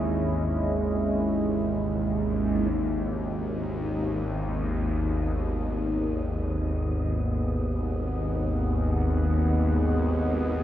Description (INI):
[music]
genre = dark ambient drone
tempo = free time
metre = none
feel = none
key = G# minor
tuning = A4 = 439 Hz
[part]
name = deep dark ambient pad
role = sustained chords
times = 0.0-10.6 s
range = G#3 to F#5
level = -30 LUFS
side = right 2 dB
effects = chorus, built-in reverb
[part]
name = bowed-like drone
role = drone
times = 0.0-10.6 s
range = G#1 to D#2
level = -26 LUFS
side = equal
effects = built-in reverb, phaser
[part]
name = wind-like tuned noise texture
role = texture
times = 3.3-10.6 s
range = D#5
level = -42 LUFS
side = equal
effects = built-in reverb
[sound]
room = wet cathedral reverb, RT60 6.2 s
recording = none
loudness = -24 LUFS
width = side -12 dB against mid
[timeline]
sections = 0.0-2.7 A section; 2.7-10.6 B section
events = fade-in on ambient pad 2.7-10.6; fade-in on synth texture 2.7-10.6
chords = 0.0 C#madd9/G#; 2.7 G#m7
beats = free time